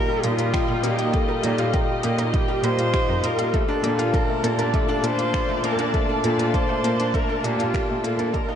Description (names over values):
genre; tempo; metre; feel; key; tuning
piano and strings electronica; 100 BPM; 4/4; straight; Bb major; A4 = 437 Hz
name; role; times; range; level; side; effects
dark viola; melody; 0.0-8.6 s; F4 to C5; -26 LUFS; equal; none
muted studio string section; sustained chords; 0.0-8.6 s; F4 to A5; -29 LUFS; equal; none
bright upright piano; riff; 0.0-8.6 s; G3 to A4; -26 LUFS; left 2 dB; tape echo
wide unison pluck; arpeggios; 0.2-8.6 s; G4 to F5; -34 LUFS; right 4 dB; none
warm studio cello section; bass; 0.2-8.2 s; F2 to Bb2; -26 LUFS; right 1 dB; sidechain pumping
organic electronic drum kit; drums; 0.2-8.5 s; finger snaps, hi-hat; -37 LUFS; left 2 dB; none
electronic kick drum; drums; 0.5-8.5 s; none; -24 LUFS; equal; overdrive
room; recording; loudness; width
moderate cathedral reverb, RT60 5.1 s; dreamy mix soaked in reverb, nothing above 10.5 kHz; -20 LUFS; side -8 dB against mid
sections
0.0-8.6 A section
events
fade-out 6.7-8.6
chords
0.0 Ebadd9/Bb; 3.5 Bbmaj7